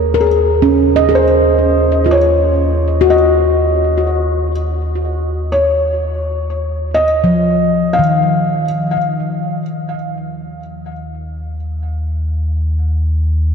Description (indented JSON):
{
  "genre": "ambient",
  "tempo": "62 BPM",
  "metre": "4/4",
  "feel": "straight",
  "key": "Eb dorian",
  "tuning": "A4 = 440 Hz",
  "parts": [
    { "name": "felt-muted upright piano", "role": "melody", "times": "0.0-8.6 s", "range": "Ab4 to F5", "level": "-17 LUFS", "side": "equal", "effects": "ping-pong delay" },
    { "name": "handpan", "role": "arpeggios", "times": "0.0-11.6 s", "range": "Eb3 to Eb5", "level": "-16 LUFS", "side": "left 1 dB", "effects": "ping-pong delay" },
    { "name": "deep rumbling drone", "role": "bass", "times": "0.0-13.5 s", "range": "Eb2", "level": "-18 LUFS", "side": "equal", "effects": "built-in reverb" }
  ],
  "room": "wet cathedral reverb, RT60 6.1 s",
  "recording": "dark, warm production",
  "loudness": "-12 LUFS",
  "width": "side -6 dB against mid",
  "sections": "0.0-13.5 A section",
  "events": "fade-in on synth drone 0.0-13.5; fade-out on handpan 0.0-13.5",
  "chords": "0.0 Ebmadd9"
}